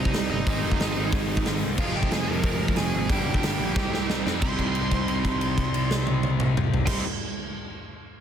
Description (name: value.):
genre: punk rock.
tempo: 182 BPM.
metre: 4/4.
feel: straight.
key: C minor.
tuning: A4 = 437 Hz.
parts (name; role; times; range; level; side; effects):
bluesy overdriven lead guitar; melody; 0.0-7.0 s; Eb4 to C6; -32 LUFS; right 3 dB; distortion.
crunchy overdriven guitar; riff; 0.0-7.0 s; F2 to Ab4; -29 LUFS; right 8 dB; none.
distorted electric guitar; riff; 0.0-7.0 s; F2 to C4; -30 LUFS; left 9 dB; distortion.
fuzz picked electric bass; bass; 0.0-7.0 s; F1 to F2; -30 LUFS; equal; overdrive.
big rock drum kit; drums; 0.1-7.0 s; crash cymbal, hi-hat, kick drum, snare drum, toms; -26 LUFS; equal; none.
room: little or no reverb.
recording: dense, heavily limited modern master.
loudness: -22 LUFS.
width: side -8 dB against mid.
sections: 0.0-4.4 A section; 4.4-7.1 B section.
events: drum fill 3.8-4.4; held note 4.4-6.9.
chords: 0.5 Ab; 1.8 Fm; 3.1 Gm; 3.8 Cm.